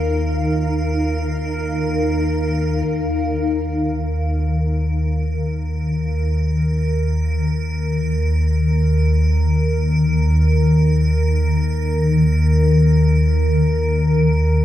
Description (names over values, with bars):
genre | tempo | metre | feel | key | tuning
dark ambient drone | free time | none | none | unclear | A4 = 438 Hz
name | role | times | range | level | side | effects
granular cloud pad | sustained chords | 0.0-2.9 s | Eb4 to F5 | -24 LUFS | left 1 dB | built-in reverb
deep rumbling drone | drone | 0.0-14.6 s | Eb2 to Eb3 | -16 LUFS | left 1 dB | built-in reverb, phaser
icy glass pad | texture | 0.0-14.6 s | Bb4 | -26 LUFS | right 3 dB | chorus, built-in reverb
room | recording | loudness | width
wet huge ambient reverb, RT60 8.7 s | none | -16 LUFS | side -12 dB against mid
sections
0.0-2.9 A section; 2.9-14.6 B section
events
filter sweep on synth drone 0.0-2.9; fade-in on ambient pad 2.9-14.6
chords
0.0 Ebsus2; 2.9 Eb5